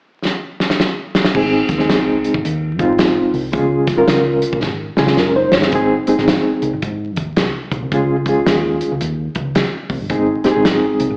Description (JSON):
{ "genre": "uptempo 1960s-style soul", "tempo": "110 BPM", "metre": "4/4", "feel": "swing 63% on 8ths", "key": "Ab major", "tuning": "A4 = 440 Hz", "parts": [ { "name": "natural country drum kit", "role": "drums", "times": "0.3-11.1 s", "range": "crash cymbal, hi-hat, kick drum, snare drum", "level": "-21 LUFS", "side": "equal", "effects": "none" }, { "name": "hollow-body short-scale picked electric bass", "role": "bass", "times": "1.3-11.2 s", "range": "Gb1 to Db3", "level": "-26 LUFS", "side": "equal", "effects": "none" }, { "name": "reed electric piano", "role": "accompaniment", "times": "1.4-11.1 s", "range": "Ab3 to Db5", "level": "-17 LUFS", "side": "equal", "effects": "fast tremolo" } ], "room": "moderate digital room reverb, RT60 1.1 s, studio ambience", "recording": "live gig heard through the venue's PA, club reverb, vinyl crackle, AM radio sound", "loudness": "-17 LUFS", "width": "mono", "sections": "0.0-1.4 A section; 1.4-5.7 B section; 5.7-11.2 C section", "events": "drum fill 0.3-1.4, 4.6-5.7", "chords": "0.0 N.C.; 1.4 Ab; 3.5 Db; 5.7 Ab; 7.9 Db; 10.1 Ab" }